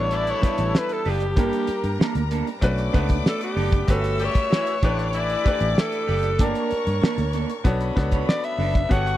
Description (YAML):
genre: lush 1970s-style soul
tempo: 96 BPM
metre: 4/4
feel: straight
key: unclear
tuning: A4 = 443 Hz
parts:
  - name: raspy alto saxophone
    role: melody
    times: 0.0-9.2 s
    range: G4 to F#5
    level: -26 LUFS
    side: left 1 dB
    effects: slapback echo
  - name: warm symphonic string section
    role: second line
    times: 0.0-9.2 s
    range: A4 to E6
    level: -34 LUFS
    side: left 2 dB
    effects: none
  - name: clear baby grand piano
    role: accompaniment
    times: 0.0-9.2 s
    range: G3 to A5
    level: -29 LUFS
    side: left 2 dB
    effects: none
  - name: clear horn section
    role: stabs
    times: 0.0-6.0 s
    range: D3 to G4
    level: -31 LUFS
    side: left 5 dB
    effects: slapback echo
  - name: vintage muted fingered electric bass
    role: bass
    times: 0.0-9.2 s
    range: F#1 to G2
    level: -25 LUFS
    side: equal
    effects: none
  - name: cloth-damped thuddy drum kit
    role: drums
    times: 0.1-9.2 s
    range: hi-hat, kick drum, snare drum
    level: -20 LUFS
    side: equal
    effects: none
  - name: electric guitar through a small old amp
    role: riff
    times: 0.3-9.2 s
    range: Bb3 to E5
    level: -30 LUFS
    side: right 9 dB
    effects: none
room: little or no reverb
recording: dry, close 1970s-style studio recording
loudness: -20 LUFS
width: side -13 dB against mid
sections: 0.0-9.2 A section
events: none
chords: 0.0 A9sus4; 1.4 Gmadd9; 2.6 Bm9; 3.9 Gmaj9#11; 4.8 A9sus4; 6.4 Gmadd9; 7.6 Bm9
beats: 0.11 0.74 | 1.37 2.00 2.62 3.25 | 3.88 4.51 5.14 5.76 | 6.39 7.02 7.65 8.28 | 8.90